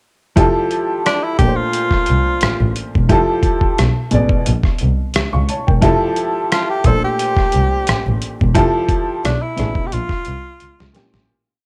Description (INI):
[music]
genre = R&B, neo-soul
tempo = 88 BPM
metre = 4/4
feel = swing 53% on 16ths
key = unclear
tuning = A4 = 440 Hz
[part]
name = warm upright piano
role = accompaniment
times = 0.4-11.3 s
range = Bb2 to Db6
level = -21 LUFS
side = equal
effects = none
[part]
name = muted double bass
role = bass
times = 0.4-11.2 s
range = E1 to Db2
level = -20 LUFS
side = equal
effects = none
[part]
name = dusty soul sampler-style drum kit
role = drums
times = 0.4-11.3 s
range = hi-hat, kick drum, rim click, snare drum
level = -20 LUFS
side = equal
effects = overdrive
[part]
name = breathy tenor saxophone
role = melody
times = 1.1-10.9 s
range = D4 to A4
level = -22 LUFS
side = equal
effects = none
[sound]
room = light reverb, small room ambience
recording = dark, warm production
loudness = -16 LUFS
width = mono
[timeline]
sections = 0.4-11.3 verse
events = fade-out 8.6-11.3; drum fill 10.6-11.3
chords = 0.4 Fmaj9; 1.4 Bbmaj9; 3.1 Fmaj9; 3.8 Bm6; 4.5 Bbm; 5.8 Fmaj9; 6.8 Bbmaj9; 8.6 Fmaj9; 9.2 Bm6; 9.9 Bbm6